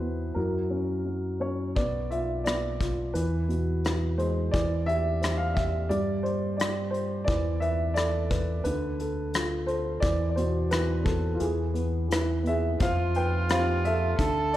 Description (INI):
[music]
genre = acoustic folk-pop ballad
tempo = 87 BPM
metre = 4/4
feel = straight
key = unclear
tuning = A4 = 441 Hz
[part]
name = dark upright piano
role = melody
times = 0.0-14.6 s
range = B2 to G5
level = -28 LUFS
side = equal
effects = none
[part]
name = fingered electric bass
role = bass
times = 0.0-14.6 s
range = B1 to G2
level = -29 LUFS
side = equal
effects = none
[part]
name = soft brush drum kit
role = drums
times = 1.8-14.6 s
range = hi-hat, kick drum, rim click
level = -31 LUFS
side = left 1 dB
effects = none
[part]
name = dark violin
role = second line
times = 12.8-14.6 s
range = F4 to A4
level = -30 LUFS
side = right 1 dB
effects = none
[sound]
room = wet scoring stage reverb, RT60 2.1 s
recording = heard from further back in the room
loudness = -25 LUFS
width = side -13 dB against mid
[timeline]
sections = 0.0-1.8 A section; 1.8-12.8 B section; 12.8-14.6 C section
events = none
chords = 0.4 F#7; 1.8 Bdim; 3.2 E; 5.9 G5; 7.3 Esus4; 8.7 Dm; 10.0 E5; 12.8 Fsus2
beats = 0.36 1.07 | 1.77 2.46 3.16 3.85 | 4.54 5.23 5.91 6.59 | 7.28 7.96 8.65 9.34 | 10.03 10.71 11.40 12.11 | 12.81 13.50 14.19